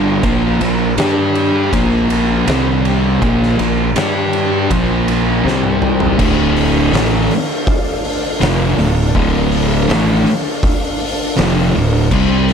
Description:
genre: stoner and doom metal.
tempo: 81 BPM.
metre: 4/4.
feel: straight.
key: D minor.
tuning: A4 = 440 Hz.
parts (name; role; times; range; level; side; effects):
string machine, cellos; sustained chords; 0.0-12.5 s; C4 to Bb5; -24 LUFS; equal; ensemble chorus.
thick fuzz guitar; riff; 0.0-12.5 s; D2 to G4; -17 LUFS; left 10 dB; distortion.
thick fuzz guitar; riff; 0.0-12.5 s; D2 to G4; -17 LUFS; right 9 dB; distortion.
fuzz fingered electric bass; bass; 0.0-12.5 s; D1 to G2; -20 LUFS; equal; overdrive.
oversized low-tuned drum kit; drums; 0.2-12.5 s; crash cymbal, hi-hat, kick drum, ride cymbal, snare drum, toms; -18 LUFS; equal; none.
room: light reverb.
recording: none.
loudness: -12 LUFS.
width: side -7 dB against mid.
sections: 0.0-6.2 A section; 6.2-12.5 B section.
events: drum fill 5.5-6.2.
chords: 0.2 Bb5; 1.0 G5; 1.7 Bb5; 2.5 C5; 3.2 Bb5; 4.0 G5; 4.7 Bb5; 5.5 C5; 6.2 Dm.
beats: | 0.23 0.98 1.72 2.47 | 3.22 3.96 4.71 5.45 | 6.19 6.93 7.68 8.42 | 9.16 9.90 10.64 11.38 | 12.11.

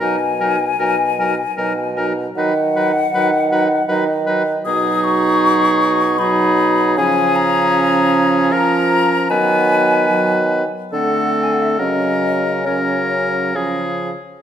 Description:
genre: classical, slow romantic movement for wind quintet.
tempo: 63-81 BPM.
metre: 3/4.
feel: rubato.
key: unclear.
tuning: A4 = 441 Hz.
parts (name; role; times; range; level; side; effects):
hollow concert flute; melody; 0.0-14.0 s; C#5 to D#6; -19 LUFS; left 5 dB; none.
clear oboe; second line; 0.0-14.1 s; G#4 to B4; -20 LUFS; left 2 dB; none.
bright clarinet; accompaniment; 0.0-14.1 s; B3 to D#4; -22 LUFS; right 6 dB; none.
warm French horn; accompaniment; 0.0-14.1 s; E#3 to A3; -23 LUFS; equal; none.
mellow bassoon; bass; 0.0-14.1 s; B2 to E#3; -20 LUFS; right 3 dB; none.
room: wet recital hall reverb, RT60 1.5 s.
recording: none.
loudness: -14 LUFS.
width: side -9 dB against mid.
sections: 0.0-14.4 A section.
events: none.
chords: 0.0 Bmaj7; 2.4 B/D#; 4.7 G#m7/B; 7.0 C#; 9.3 B/D#; 10.9 D7; 11.8 F#/C#; 13.6 C#.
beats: | 0.01 0.80 1.58 | 2.37 3.15 3.90 | 4.66 5.42 6.19 | 6.98 7.74 8.52 | 9.30 10.10 10.93 | 11.80 12.67 13.56.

